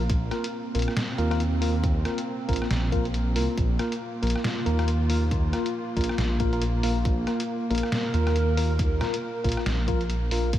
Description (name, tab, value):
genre	deep dubstep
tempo	138 BPM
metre	4/4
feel	swing 59% on 16ths, half-time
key	unclear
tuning	A4 = 439 Hz
part	dark analog pad	sustained chords	0.0-10.6 s	Bb3 to Bb4	-31 LUFS	right 1 dB	chorus
part	dark detuned saw bass	bass	0.0-10.6 s	Bb1 to Eb2	-25 LUFS	equal	none
part	electronic kick drum	drums	0.1-10.6 s	none	-27 LUFS	equal	small room ambience
part	trip hop sampler-style drum kit	drums	0.1-10.6 s	hi-hat, rim click, snare drum	-33 LUFS	equal	small room ambience
part	mellow tine electric piano	stabs	0.3-10.5 s	Bb3 to Bb4	-30 LUFS	left 2 dB	medium stereo tremolo, dub echo
room	light reverb, digital ambience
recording	none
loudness	-23 LUFS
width	side -12 dB against mid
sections	0.0-10.6 A section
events	none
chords	0.0 Bb5